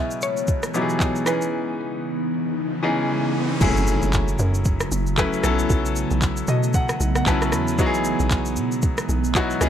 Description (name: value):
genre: amapiano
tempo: 115 BPM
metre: 4/4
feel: swing 58% on 16ths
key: F# dorian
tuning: A4 = 440 Hz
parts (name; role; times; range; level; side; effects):
- mallet-like synth pluck; melody; 0.0-2.8 s; B4 to E5; -28 LUFS; equal; chorus, analog delay
- bright concert grand piano; accompaniment; 0.0-9.7 s; B2 to B5; -24 LUFS; left 2 dB; none
- ethereal airy pad; sustained chords; 0.0-9.7 s; B2 to D#5; -27 LUFS; right 1 dB; ensemble chorus, built-in reverb, sidechain pumping
- smooth R&B drum kit; drums; 0.1-9.7 s; crash cymbal, handclaps, kick drum, rim click, shaker; -23 LUFS; equal; none
- riser and impact; sound effects; 2.5-5.7 s; none; -28 LUFS; right 1 dB; none
- hollow log drum bass; bass; 3.6-9.7 s; F#1 to B2; -24 LUFS; equal; none
room: digital ambience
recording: dry, gritty hardware recording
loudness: -19 LUFS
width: side -9 dB against mid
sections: 0.0-3.6 A section; 3.6-9.7 B section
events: riser 2.5-3.6; drop 3.6-9.7; impact 3.6-5.7; grand piano fill 6.2-7.8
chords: 0.0 Emaj7/B; 1.3 C#m9; 3.6 F#m7; 5.4 B9sus4; 7.8 Emaj7/B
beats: 0.48 1.00 | 1.52 2.05 2.57 3.09 | 3.61 4.13 4.66 5.18 | 5.70 6.22 6.74 7.26 | 7.79 8.31 8.83 9.35